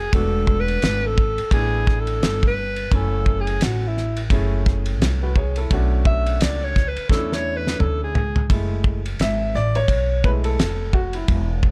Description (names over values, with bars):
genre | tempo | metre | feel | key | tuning
hip hop, jazz-hop | 86 BPM | 4/4 | swing 59% on 16ths | F# minor | A4 = 440 Hz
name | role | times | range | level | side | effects
breathy alto saxophone | melody | 0.0-8.5 s | E4 to E5 | -27 LUFS | equal | none
upright bass | bass | 0.0-11.7 s | E1 to E2 | -25 LUFS | equal | none
clear upright piano | accompaniment | 0.1-11.5 s | G#3 to G#5 | -30 LUFS | equal | none
cloth-damped thuddy drum kit | drums | 0.1-11.7 s | hi-hat, kick drum, ride cymbal, snare drum, toms | -24 LUFS | equal | none
room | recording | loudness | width
studio reverb | none | -21 LUFS | mono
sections
0.0-8.5 A section; 8.5-11.7 A section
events
alto saxophone solo 0.0-8.5; drum fill 7.1-8.5; upright piano solo 8.5-11.7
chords
0.1 E7sus4; 2.9 F#m9; 5.7 Bm9; 8.5 F#m9